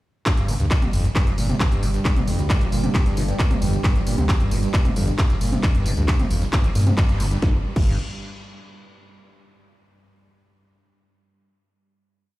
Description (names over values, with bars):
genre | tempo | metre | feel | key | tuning
driving peak-time techno | 134 BPM | 4/4 | straight | G minor | A4 = 440 Hz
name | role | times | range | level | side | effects
screaming distorted acid line | riff | 0.3-8.0 s | G1 to G3 | -27 LUFS | equal | distortion, lush chorus, sidechain pumping, tape echo
deep dark ambient pad | drone | 1.1-7.5 s | G2 to G3 | -32 LUFS | right 2 dB | chorus, built-in reverb, sidechain pumping
electronic kick drum | drums | 0.3-7.8 s | none | -20 LUFS | equal | none
techno drum kit | drums | 0.3-7.8 s | crash cymbal, handclaps, hi-hat, ride cymbal, snare drum, tambourine, toms | -27 LUFS | equal | none
dark detuned saw bass | bass | 0.5-8.0 s | G1 to G2 | -22 LUFS | equal | tube saturation, sidechain pumping
room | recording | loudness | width
little or no reverb | played on a big sound system in a bare room, stone room reverb | -18 LUFS | side -17 dB against mid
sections
0.3-7.4 drop; 7.4-9.2 final note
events
drop 0.3-7.4; band accent 7.0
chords
none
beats
| 0.26 0.71 1.16 1.60 | 2.05 2.50 2.95 3.39 | 3.84 4.29 4.74 5.18 | 5.63 6.08 6.53 6.98 | 7.42 7.87